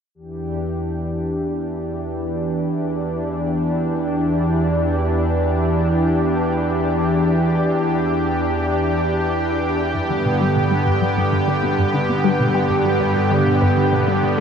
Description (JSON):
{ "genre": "ambient, sequencer-driven space music", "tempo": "98 BPM", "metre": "4/4", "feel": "straight", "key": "E minor", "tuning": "A4 = 439 Hz", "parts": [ { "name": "lush unison pad", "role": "sustained chords", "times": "0.1-14.4 s", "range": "E2 to G4", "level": "-18 LUFS", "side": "equal", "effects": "chorus" }, { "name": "resonant blip pluck", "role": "riff", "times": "9.9-14.3 s", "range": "G2 to G3", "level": "-22 LUFS", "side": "left 1 dB", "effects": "phaser, ping-pong delay" } ], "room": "wet huge ambient reverb, RT60 8.4 s", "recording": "dreamy mix soaked in reverb", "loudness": "-17 LUFS", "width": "side -7 dB against mid", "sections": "0.2-14.4 A section", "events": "none", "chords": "0.2 Em7; 9.9 G", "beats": "| 0.15 0.77 1.38 1.99 | 2.60 3.21 3.83 4.44 | 5.05 5.66 6.28 6.89 | 7.50 8.11 8.72 9.34 | 9.95 10.56 11.17 11.79 | 12.40 13.01 13.62 14.23" }